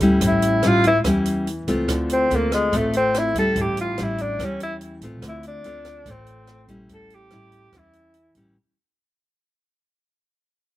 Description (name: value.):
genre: bossa nova.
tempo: 144 BPM.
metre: 4/4.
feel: straight.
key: unclear.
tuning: A4 = 437 Hz.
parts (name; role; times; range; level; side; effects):
nylon-string guitar; accompaniment; 0.0-8.6 s; A2 to F4; -22 LUFS; left 1 dB; none.
upright bass; bass; 0.0-8.5 s; A1 to E2; -28 LUFS; right 1 dB; none.
open jazz drum kit; drums; 0.0-8.4 s; hi-hat, kick drum, rim click; -30 LUFS; right 1 dB; none.
breathy tenor saxophone; melody; 0.3-8.4 s; G#3 to A4; -21 LUFS; left 1 dB; none.
room: little or no reverb.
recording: recorded outdoors, with no room sound.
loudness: -18 LUFS.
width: side -15 dB against mid.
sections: 0.0-8.6 A section.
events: fade-out 0.0-8.6; tenor saxophone solo 0.0-8.6.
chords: 0.2 A7; 1.9 Dm7; 3.6 A7; 5.2 Dm7; 6.9 A7.